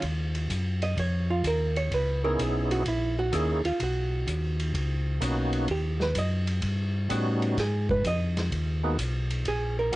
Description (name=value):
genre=soul jazz organ trio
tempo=127 BPM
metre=4/4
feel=swing 68% on 8ths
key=Eb minor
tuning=A4 = 440 Hz
part: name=archtop guitar, miked and amplified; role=accompaniment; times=0.0-9.9 s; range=Fb4 to Eb5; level=-29 LUFS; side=right 2 dB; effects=cassette tape
part: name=mellow tonewheel organ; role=bass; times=0.0-10.0 s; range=Bb1 to A2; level=-28 LUFS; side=equal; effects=slow rotary speaker
part: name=vintage drum kit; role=drums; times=0.0-10.0 s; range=hi-hat, kick drum, ride cymbal, snare drum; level=-34 LUFS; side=equal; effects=none
part: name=percussive tonewheel organ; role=melody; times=2.2-10.0 s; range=Gb3 to Ab4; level=-30 LUFS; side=equal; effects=slow rotary speaker, overdrive, chorus vibrato, cassette tape
room=light reverb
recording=home recording on cassette, nothing above 10.7 kHz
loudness=-25 LUFS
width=side -17 dB against mid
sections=0.0-10.0 A section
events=hollow-body jazz guitar solo 0.0-10.0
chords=0.0 Ebmadd9; 1.9 Dbm9; 2.9 Gb13/Bb; 3.8 Bmaj9; 5.7 Eb7alt; 7.6 Abm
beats=| 0.03 0.50 0.97 1.44 | 1.91 2.39 2.86 3.33 | 3.80 4.27 4.75 5.22 | 5.69 6.16 6.63 7.10 | 7.57 8.05 8.52 8.99 | 9.46 9.93